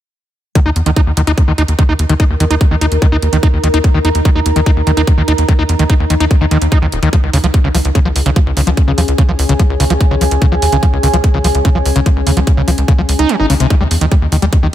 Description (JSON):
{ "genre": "psychedelic trance", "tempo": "146 BPM", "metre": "4/4", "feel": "straight", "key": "unclear", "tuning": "A4 = 438 Hz", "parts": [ { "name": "screaming distorted acid line", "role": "riff", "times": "0.6-14.7 s", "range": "C3 to Eb4", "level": "-16 LUFS", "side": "equal", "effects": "distortion, chorus, auto-pan, sidechain pumping, ping-pong delay" }, { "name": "electronic hi-hat", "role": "drums", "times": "0.6-14.6 s", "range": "none", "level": "-23 LUFS", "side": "right 2 dB", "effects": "overdrive" }, { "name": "electronic kick drum", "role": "drums", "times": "0.6-14.6 s", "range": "none", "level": "-11 LUFS", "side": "equal", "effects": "overdrive" }, { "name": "deep dark ambient pad", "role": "texture", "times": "2.0-14.7 s", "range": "Db4 to Bb5", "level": "-20 LUFS", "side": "equal", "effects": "chorus, built-in reverb, sidechain pumping" }, { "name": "tight sequencer bass", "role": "bass", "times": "0.7-14.7 s", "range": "Eb1 to Fb2", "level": "-14 LUFS", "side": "equal", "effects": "none" } ], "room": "digital ambience", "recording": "none", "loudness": "-10 LUFS", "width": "side -12 dB against mid", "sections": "0.6-14.7 A section", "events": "kick drops out 13.3-13.7", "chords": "0.6 Eb5; 7.1 Db5; 13.7 Eb5" }